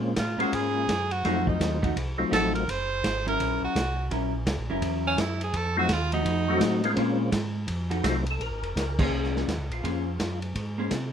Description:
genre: soul jazz organ trio.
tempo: 168 BPM.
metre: 4/4.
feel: swing 64% on 8ths.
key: Bb minor.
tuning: A4 = 439 Hz.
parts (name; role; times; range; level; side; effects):
percussive tonewheel organ; melody; 0.0-2.6, 5.8-10.4 s; Gb3 to Bb4; -29 LUFS; left 3 dB; slow rotary speaker, chorus vibrato.
mellow tonewheel organ; bass; 0.0-11.1 s; F1 to C3; -30 LUFS; equal; slow rotary speaker.
bright tenor saxophone; melody; 0.2-6.9 s; Db4 to C5; -28 LUFS; right 3 dB; none.
vintage drum kit; drums; 0.2-11.0 s; crash cymbal, hi-hat, kick drum, ride cymbal, snare drum; -31 LUFS; equal; none.
vintage hollow-body jazz guitar; accompaniment; 0.4-10.9 s; F3 to C5; -31 LUFS; equal; none.
room: light reverb.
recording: minimal, uncompressed stereo recording.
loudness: -24 LUFS.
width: side -8 dB against mid.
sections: 0.0-8.4 A section; 8.4-11.1 B section.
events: tenor saxophone solo 0.0-8.4; band accent 8.9.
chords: 0.0 Bbm9; 1.2 F7b9; 2.7 Gb7; 5.5 F7b9; 7.0 Bbm9; 7.7 F7b9; 8.4 Bbm9.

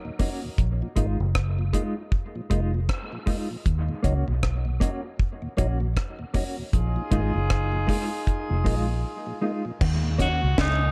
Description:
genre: dub reggae.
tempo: 78 BPM.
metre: 4/4.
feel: swing 60% on 16ths.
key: Eb minor.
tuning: A4 = 440 Hz.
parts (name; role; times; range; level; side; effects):
mellow horn section; second line; 0.0-0.2, 6.7-9.4 s; Gb3 to Ab4; -36 LUFS; equal; dub echo.
mellow tonewheel organ; accompaniment; 0.1-10.9 s; Eb2 to Eb4; -38 LUFS; equal; slow rotary speaker, dub echo.
mellow electric guitar; accompaniment; 0.2-10.4 s; Ab3 to Gb4; -35 LUFS; equal; tremolo, dub echo.
deep reggae drum kit; drums; 0.2-10.8 s; crash cymbal, hi-hat, kick drum, rim click, snare drum; -28 LUFS; equal; none.
vintage muted fingered electric bass; bass; 0.6-10.9 s; F1 to Eb2; -27 LUFS; equal; none.
electric guitar with an envelope filter; arpeggios; 9.8-10.0 s; Eb3; -40 LUFS; equal; tremolo, dub echo.
clear tenor saxophone; melody; 10.2-10.9 s; Eb4 to Gb4; -28 LUFS; equal; dub echo.
room: light reverb, studio reverb.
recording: none.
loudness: -26 LUFS.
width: mono.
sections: 0.0-9.8 A section; 9.8-10.9 B section.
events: break 0.0-9.8.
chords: 0.0 Ebm7; 0.6 Bb7sus4; 3.7 Ebm7; 6.7 Bb7sus4; 9.8 Ebm7.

